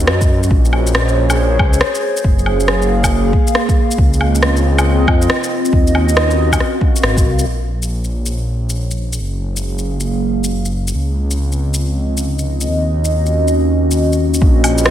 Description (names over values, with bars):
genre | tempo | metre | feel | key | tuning
future garage | 138 BPM | 4/4 | swing 64% on 16ths | Bb minor | A4 = 440 Hz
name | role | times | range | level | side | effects
dark analog pad | sustained chords | 0.0-14.9 s | Bb3 to F5 | -18 LUFS | equal | chorus, phaser, sidechain pumping
swelling detuned saw bass | bass | 0.0-14.9 s | Gb1 to Gb2 | -16 LUFS | equal | none
deep house drum kit | drums | 0.0-14.9 s | hi-hat, rim click, shaker, woodblock | -20 LUFS | left 1 dB | studio reverb
electronic kick drum | drums | 0.2-7.2, 14.4-14.5 s | none | -14 LUFS | equal | studio reverb
room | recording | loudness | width
light reverb | none | -13 LUFS | side -11 dB against mid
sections
0.0-7.5 A section; 7.5-14.4 B section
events
filter sweep on analog synth pad 7.5-14.4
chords
0.0 Ebm7; 0.5 Bbm9; 2.2 Gbmaj9; 4.0 Dbmaj9; 5.7 Ebm7; 6.6 Ab13; 7.5 Bbm9; 9.2 Gbmaj9; 10.9 Dbmaj9; 12.7 Ebm7